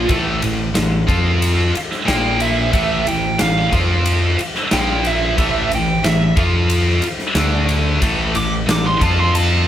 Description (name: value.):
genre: hard rock.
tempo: 91 BPM.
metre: 4/4.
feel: straight.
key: A minor.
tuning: A4 = 440 Hz.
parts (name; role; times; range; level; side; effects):
biting lead guitar; melody; 0.0-9.7 s; E5 to D6; -20 LUFS; right 2 dB; overdrive.
high-gain distorted guitar; riff; 0.0-9.7 s; A2 to F4; -18 LUFS; equal; distortion.
growling picked electric bass; bass; 0.0-9.6 s; A1 to F2; -20 LUFS; equal; overdrive.
huge arena drum kit; drums; 0.1-9.5 s; kick drum, ride cymbal, snare drum; -21 LUFS; equal; none.
room: light reverb.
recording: band playing live in one room.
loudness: -14 LUFS.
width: side -11 dB against mid.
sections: 0.0-9.7 A section.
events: lead electric guitar solo 0.0-9.7.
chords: 0.1 A5; 1.1 F5; 1.8 N.C.; 2.1 Bb5; 2.7 A5; 3.7 F5; 4.4 N.C.; 4.7 Bb5; 5.4 A5; 6.4 F5; 7.0 N.C.; 7.4 D5; 8.0 A5; 9.0 F5.